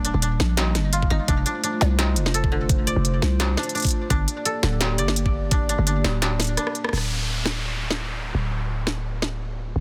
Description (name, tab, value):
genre	half-time drum and bass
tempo	170 BPM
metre	4/4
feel	swing 54% on 16ths, half-time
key	D phrygian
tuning	A4 = 440 Hz
part	dark analog pad	sustained chords	0.0-9.8 s	G3 to D5	-34 LUFS	equal	chorus, sidechain pumping
part	koto	arpeggios	0.0-9.0 s	D3 to D5	-31 LUFS	equal	tape echo
part	growling 808-style bass	bass	0.0-9.8 s	D1 to C2	-26 LUFS	equal	none
part	industrial drum kit	drums	0.0-9.3 s	hi-hat, rim click, snare drum	-27 LUFS	equal	none
part	electronic kick drum	drums	1.0-5.6 s	none	-25 LUFS	equal	overdrive
part	downlifter	sound effects	6.9-9.8 s	none	-33 LUFS	equal	none
room	little or no reverb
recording	dense, heavily limited modern master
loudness	-23 LUFS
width	mono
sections	0.0-6.9 A section; 6.9-9.8 B section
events	drop 0.0-6.9; drum fill 6.6-6.9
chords	0.0 Eb; 1.3 F; 4.1 Gm; 6.9 Dm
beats	0.22 0.57 0.93 | 1.28 1.63 1.99 2.34 | 2.69 3.05 3.40 3.75 | 4.11 4.46 4.81 5.16 | 5.52 5.87 6.22 6.58 | 6.93 7.28 7.63 7.99 | 8.34 8.69 9.05 9.40 | 9.75